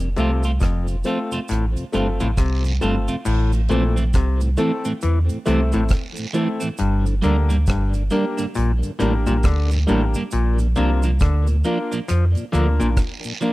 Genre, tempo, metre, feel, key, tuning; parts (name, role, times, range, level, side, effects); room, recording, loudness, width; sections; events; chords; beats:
roots reggae; 68 BPM; 4/4; swing 61% on 16ths; A4 = 439 Hz
mellow tonewheel organ; accompaniment; 0.0-13.5 s; F2 to D4; -29 LUFS; left 1 dB; stopped rotary speaker, tape echo
warm sub bass; bass; 0.0-13.0 s; F1 to F2; -19 LUFS; equal
deep reggae drum kit; drums; 0.0-13.5 s; crash cymbal, hi-hat, kick drum, rim click; -21 LUFS; equal
cabasa and guiro; percussion; 0.0-13.5 s; -37 LUFS; right 6 dB
electric guitar at the edge of break-up; accompaniment; 0.2-13.5 s; E3 to F4; -26 LUFS; right 4 dB; spring reverb, tape echo
overdriven clav; riff; 0.2-12.9 s; F2 to F3; -24 LUFS; left 3 dB
warm grand piano; stabs; 0.2-13.5 s; A3 to Bb4; -26 LUFS; left 3 dB
studio reverb; dry, close 1970s-style studio recording; -18 LUFS; side -18 dB against mid
0.0-3.3 A section; 3.3-13.5 B section
0.0 F; 3.3 Am; 6.8 Gm; 10.3 Bb
0.61 1.49 2.37 | 3.26 4.14 5.02 5.91 | 6.79 7.67 8.56 9.44 | 10.32 11.20 12.09 12.97